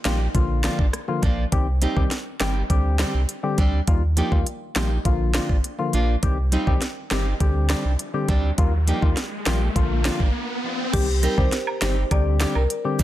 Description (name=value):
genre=dancehall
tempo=102 BPM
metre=4/4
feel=straight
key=C minor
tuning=A4 = 440 Hz
part: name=nylon-string guitar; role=arpeggios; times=0.0-13.0 s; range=F3 to G4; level=-29 LUFS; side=right 2 dB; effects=ping-pong delay
part: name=percussive organ stab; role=accompaniment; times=0.1-13.0 s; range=D3 to G4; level=-28 LUFS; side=left 4 dB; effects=chorus, sidechain pumping
part: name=warm sub bass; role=bass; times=0.1-13.0 s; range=G1 to Eb2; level=-22 LUFS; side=equal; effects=none
part: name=island pop drum kit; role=drums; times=0.1-13.0 s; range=crash cymbal, handclaps, hi-hat, kick drum, rim click, snare drum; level=-23 LUFS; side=equal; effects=none
part: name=riser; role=sound effects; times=8.0-10.9 s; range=none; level=-31 LUFS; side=equal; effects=none
part: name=marimba with medium hard mallets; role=melody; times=10.9-12.7 s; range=G4 to D5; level=-27 LUFS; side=equal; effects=ping-pong delay
part: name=cabasa and woodblock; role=percussion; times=11.2-13.0 s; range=none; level=-33 LUFS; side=right 6 dB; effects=none
room=digital ambience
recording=dense, heavily limited modern master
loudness=-20 LUFS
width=side -14 dB against mid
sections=0.0-10.9 A section; 10.9-13.0 B section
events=riser 8.0-10.9; break 10.3-10.9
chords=0.3 Bb; 1.5 Cm; 2.7 Gsus4; 3.9 Ebadd9; 5.1 Bb; 6.2 Cm; 7.4 Gsus4; 8.6 Ebadd9; 9.8 Bb; 10.9 Cm; 12.1 Gsus4